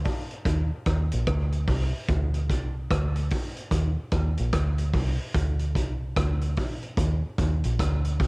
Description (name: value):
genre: dub reggae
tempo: 74 BPM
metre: 4/4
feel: swing 62% on 16ths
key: unclear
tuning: A4 = 440 Hz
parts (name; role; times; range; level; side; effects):
- clean electric guitar; accompaniment; 0.0-2.7 s; D4 to Eb5; -53 LUFS; right 5 dB; none
- bright upright piano; stabs; 0.0-1.8 s; D4 to Bb4; -46 LUFS; left 6 dB; high-pass filter, low-pass filter, cassette tape, dub echo
- deep dub fingered electric bass; bass; 0.0-8.3 s; Bb1 to Eb2; -25 LUFS; equal; none
- vintage drum kit; drums; 0.0-8.3 s; hi-hat, kick drum, rim click; -28 LUFS; equal; none
room: little or no reverb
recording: home recording on cassette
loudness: -24 LUFS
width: side -34 dB against mid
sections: 0.0-8.3 A section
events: filter sweep 0.0-5.3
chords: 0.5 Eb; 2.1 Dm; 3.7 Eb5; 5.3 Csus2; 7.0 Eb5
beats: 0.46 1.27 | 2.09 2.90 3.71 4.53 | 5.34 6.16 6.98 7.79